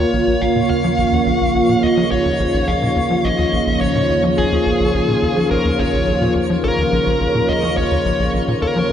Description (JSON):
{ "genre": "ambient, sequencer-driven space music", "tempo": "106 BPM", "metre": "4/4", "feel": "straight", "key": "unclear", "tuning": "A4 = 443 Hz", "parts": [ { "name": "dark smooth lead guitar", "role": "melody", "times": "0.0-8.9 s", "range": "Ab4 to F5", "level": "-20 LUFS", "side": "left 1 dB", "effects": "overdrive, analog delay" }, { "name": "sweeping resonant pad", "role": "sustained chords", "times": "0.0-8.9 s", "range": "Eb2 to Bb4", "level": "-18 LUFS", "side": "equal", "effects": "chorus" }, { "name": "tight sequencer bass", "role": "riff", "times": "0.0-8.8 s", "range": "Bb1 to F3", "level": "-22 LUFS", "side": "equal", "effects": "lush chorus, analog delay" }, { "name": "twinkling granular texture", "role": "texture", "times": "0.2-8.9 s", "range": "Db5", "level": "-30 LUFS", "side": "right 1 dB", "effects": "built-in reverb, wide subtle chorus" } ], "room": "wet lush hall reverb, RT60 2.6 s", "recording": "dreamy mix soaked in reverb", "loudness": "-14 LUFS", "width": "side -9 dB against mid", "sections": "0.0-8.9 A section", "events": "none", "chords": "0.0 Bbm" }